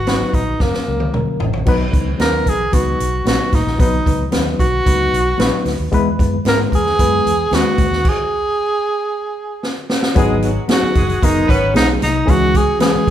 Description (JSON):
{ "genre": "uptempo 1960s-style soul", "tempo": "113 BPM", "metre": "4/4", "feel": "straight", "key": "unclear", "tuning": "A4 = 441 Hz", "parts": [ { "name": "clear tenor saxophone", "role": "melody", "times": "0.0-13.1 s", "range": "A#3 to A#4", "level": "-18 LUFS", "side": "right 1 dB", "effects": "none" }, { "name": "vintage muted fingered electric bass", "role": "bass", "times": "0.0-13.1 s", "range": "E1 to G#2", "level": "-21 LUFS", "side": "equal", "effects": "none" }, { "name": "reed electric piano", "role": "accompaniment", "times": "0.1-13.1 s", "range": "E3 to B4", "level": "-20 LUFS", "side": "left 3 dB", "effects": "fast tremolo" }, { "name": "swinging big-band drum kit", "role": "drums", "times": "0.1-13.1 s", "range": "crash cymbal, hi-hat, kick drum, snare drum, toms", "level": "-18 LUFS", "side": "equal", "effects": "none" }, { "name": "congas", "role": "percussion", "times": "1.7-13.1 s", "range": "none", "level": "-30 LUFS", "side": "right 3 dB", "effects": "none" }, { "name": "warm horn section", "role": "second line", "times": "10.2-11.7 s", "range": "F#3 to B4", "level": "-25 LUFS", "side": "right 2 dB", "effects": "none" } ], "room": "moderate large studio reverb, RT60 1.2 s", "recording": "band playing live in one room", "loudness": "-14 LUFS", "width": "side -11 dB against mid", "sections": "0.0-1.7 A section; 1.7-10.2 B section; 10.2-13.1 C section", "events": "drum fill 0.6-1.7, 9.6-10.2; stop 8.0-10.2", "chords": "0.0 B; 0.6 F#; 1.7 B; 5.9 E; 10.2 G#m7; 12.3 C#m" }